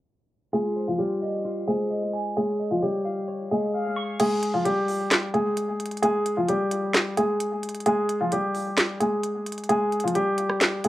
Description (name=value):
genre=hip hop, trap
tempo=131 BPM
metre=4/4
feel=half-time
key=F minor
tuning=A4 = 440 Hz
part: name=dark baby grand piano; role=melody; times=0.5-10.9 s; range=F3 to Ab4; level=-24 LUFS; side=equal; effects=low-pass filter, tape echo
part: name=clean electric guitar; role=accompaniment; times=0.5-4.2 s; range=F4 to Db6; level=-31 LUFS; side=equal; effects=lush chorus, low-pass filter
part: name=trap drum kit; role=drums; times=4.2-10.9 s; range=crash cymbal, handclaps, hi-hat, rim click, snare drum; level=-25 LUFS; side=equal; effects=none
room=moderate studio reverb, RT60 0.6 s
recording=worn, warbling old tape, cassette tape, warbly pitch drift, low-pass filter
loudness=-23 LUFS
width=side -15 dB against mid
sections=0.5-4.2 A section; 4.2-10.9 B section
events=filter sweep 0.5-4.2; kick muted 4.2-10.9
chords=0.5 Fm7; 2.4 Dbadd9; 4.2 Fmadd9 (rootless)